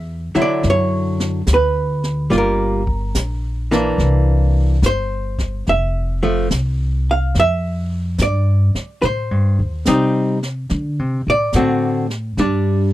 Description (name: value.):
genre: jazz ballad.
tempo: 71 BPM.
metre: 4/4.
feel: swing 67% on 8ths.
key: unclear.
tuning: A4 = 441 Hz.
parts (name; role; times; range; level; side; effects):
archtop guitar, miked and amplified; accompaniment; 0.0-12.9 s; D3 to F5; -18 LUFS; equal; none.
upright bass; bass; 0.0-12.9 s; F1 to D3; -18 LUFS; equal; none.
jazz brush drum kit; drums; 0.3-12.9 s; brushed snare drum, hi-hat, kick drum, snare drum; -26 LUFS; equal; none.
room: little or no reverb.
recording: dry, close 1970s-style studio recording.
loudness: -16 LUFS.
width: side -15 dB against mid.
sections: 0.0-12.9 A section.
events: none.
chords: 0.0 Dmaj9; 2.3 Gm7; 4.0 C9; 5.7 Fmaj7sus2; 9.0 Am7b5; 10.7 D7; 12.4 G5.